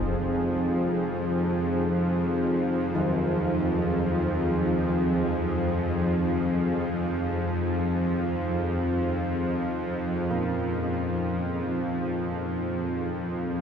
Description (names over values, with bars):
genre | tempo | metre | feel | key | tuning
dark ambient drone | free time | none | none | F minor | A4 = 440 Hz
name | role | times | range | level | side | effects
dark analog pad | sustained chords | 0.0-13.6 s | C4 to Ab4 | -30 LUFS | equal | chorus
bowed-like drone | drone | 0.0-13.6 s | F2 to F3 | -26 LUFS | equal | built-in reverb
old church bells | arpeggios | 3.0-13.6 s | Eb3 to Bb3 | -34 LUFS | left 1 dB | tape echo
room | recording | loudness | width
wet huge ambient reverb, RT60 9.2 s | dark, warm production | -24 LUFS | side -7 dB against mid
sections
0.0-13.6 A section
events
none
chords
0.0 F5